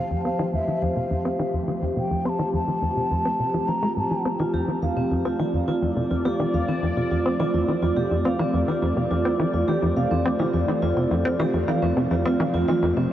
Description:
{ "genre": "ambient, sequencer-driven space music", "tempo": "105 BPM", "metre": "4/4", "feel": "straight", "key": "F major", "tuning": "A4 = 439 Hz", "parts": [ { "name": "mellow hollow wooden flute", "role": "melody", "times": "0.0-4.2 s", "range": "E5 to C6", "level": "-29 LUFS", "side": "equal", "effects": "tape echo" }, { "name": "sweeping resonant pad", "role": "sustained chords", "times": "0.0-13.1 s", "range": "F3 to D5", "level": "-25 LUFS", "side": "equal", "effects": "chorus" }, { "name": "tight sequencer bass", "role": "riff", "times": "0.0-13.1 s", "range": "F2 to C4", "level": "-25 LUFS", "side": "equal", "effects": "lush chorus, tape echo" }, { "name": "vibraphone with medium mallets", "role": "arpeggios", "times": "4.4-13.1 s", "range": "C4 to F5", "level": "-27 LUFS", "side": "right 3 dB", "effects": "auto-pan, tape echo" } ], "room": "wet huge ambient reverb, RT60 7.2 s", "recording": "worn, warbling old tape, cassette tape, warbly pitch drift, nothing above 10.6 kHz, faint mains hum", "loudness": "-21 LUFS", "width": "side -12 dB against mid", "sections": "0.0-13.1 A section", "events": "filter sweep on analog synth bass 0.0-13.1", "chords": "0.0 Fadd9", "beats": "0.25 0.82 1.40 | 1.97 2.54 3.11 3.68 | 4.25 4.82 5.39 5.97 | 6.54 7.11 7.68 8.25 | 8.82 9.39 9.97 10.54 | 11.11 11.68 12.25 12.82" }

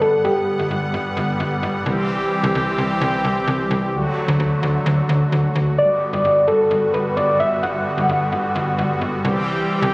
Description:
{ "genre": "pop", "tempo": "130 BPM", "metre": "4/4", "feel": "straight", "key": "G major", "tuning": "A4 = 440 Hz", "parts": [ { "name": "soft struck synth lead", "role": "melody", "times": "0.0-0.9, 5.8-9.0 s", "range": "G4 to F#5", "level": "-18 LUFS", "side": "equal", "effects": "chorus, tape echo" }, { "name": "brassy analog pad", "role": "sustained chords", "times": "0.0-9.9 s", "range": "D3 to F#5", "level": "-21 LUFS", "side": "equal", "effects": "chorus" }, { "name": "slap-like FM bass", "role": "bass", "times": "0.0-9.9 s", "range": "G1 to D2", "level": "-22 LUFS", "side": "equal", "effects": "none" } ], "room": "moderate plate reverb, RT60 2.7 s", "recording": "recorded on a phone in the room, studio reverb", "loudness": "-17 LUFS", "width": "side -25 dB against mid", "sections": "0.0-9.9 A section", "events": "none", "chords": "0.0 Gmaj7; 1.9 C; 3.9 D; 5.8 Gmaj7; 9.2 C", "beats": "| 0.24 0.71 1.17 1.63 | 2.09 2.55 3.02 3.48 | 3.94 4.40 4.86 5.32 | 5.78 6.25 6.71 7.17 | 7.63 8.09 8.55 9.02 | 9.48 9.94" }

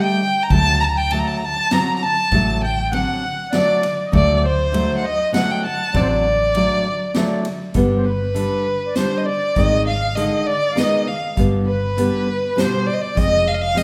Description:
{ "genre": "klezmer", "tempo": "99 BPM", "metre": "3/4", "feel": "straight", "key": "D phrygian dominant, G phrygian dominant from 7.8 s", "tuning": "A4 = 440 Hz", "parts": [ { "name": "rich violin", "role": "melody", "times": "0.0-13.8 s", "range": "B4 to Bb5", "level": "-23 LUFS", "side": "equal", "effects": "none" }, { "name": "accordion", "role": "second line", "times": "0.0-13.8 s", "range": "B4 to Bb5", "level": "-28 LUFS", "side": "equal", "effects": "light tremolo tuning" }, { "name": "nylon-string guitar", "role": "accompaniment", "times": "0.0-13.8 s", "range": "B2 to D4", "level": "-24 LUFS", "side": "equal", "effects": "none" }, { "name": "hollow-body short-scale fingered electric bass", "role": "bass", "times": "0.5-13.8 s", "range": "F1 to D2", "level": "-25 LUFS", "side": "equal", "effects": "none" }, { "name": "street-band drum kit", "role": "drums", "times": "0.5-13.8 s", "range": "hi-hat, kick drum, ride cymbal, snare drum", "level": "-27 LUFS", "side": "equal", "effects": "none" } ], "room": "wet recital hall reverb, RT60 1.3 s", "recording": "recorded in a church or concert hall", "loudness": "-19 LUFS", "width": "mono", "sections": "0.0-7.8 A section; 7.8-13.8 B section", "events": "none", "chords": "0.0 G5; 0.5 D; 7.8 G; 9.6 Ab; 11.4 G; 13.2 Fm", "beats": "| 0.50 1.11 1.72 | 2.32 2.93 3.53 | 4.14 4.74 5.35 | 5.95 6.56 7.16 | 7.76 8.37 8.97 | 9.57 10.17 10.78 | 11.38 11.98 12.58 | 13.18 13.78" }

